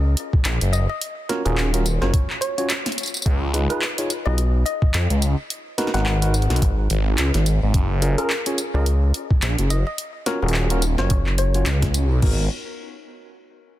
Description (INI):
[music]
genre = glitch hop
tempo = 107 BPM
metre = 4/4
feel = swing 58% on 16ths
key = G# dorian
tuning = A4 = 440 Hz
[part]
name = rubbery square bass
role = bass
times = 0.0-0.2, 4.3-11.6 s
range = F#1 to C#2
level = -18 LUFS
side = equal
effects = none
[part]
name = drum and bass drum kit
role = drums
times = 0.2-12.4 s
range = crash cymbal, handclaps, hi-hat, snare drum, tambourine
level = -26 LUFS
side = equal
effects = overdrive
[part]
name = electronic kick drum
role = drums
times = 0.3-12.4 s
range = none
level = -19 LUFS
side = equal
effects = none
[part]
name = phased detuned saw bass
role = bass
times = 0.5-12.5 s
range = D#1 to E#2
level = -19 LUFS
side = equal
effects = phaser, tube saturation
[part]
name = woody wave-folded pluck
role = melody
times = 0.7-11.9 s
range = A#4 to F#5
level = -30 LUFS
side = left 2 dB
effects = chorus, ping-pong delay
[part]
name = tine electric piano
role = stabs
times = 1.3-12.4 s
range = B3 to C#5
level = -28 LUFS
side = right 1 dB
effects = vintage 12-bit sampler grit, sidechain pumping, ping-pong delay
[sound]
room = little or no reverb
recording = dense, heavily limited modern master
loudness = -18 LUFS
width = side -14 dB against mid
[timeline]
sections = 0.0-12.2 A section; 12.2-13.8 B section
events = drop 0.0-12.2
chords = 0.0 F#; 1.0 D#m7; 3.3 C#7; 5.5 G#m7; 7.7 F#maj7; 10.0 D#m7; 12.2 G#m7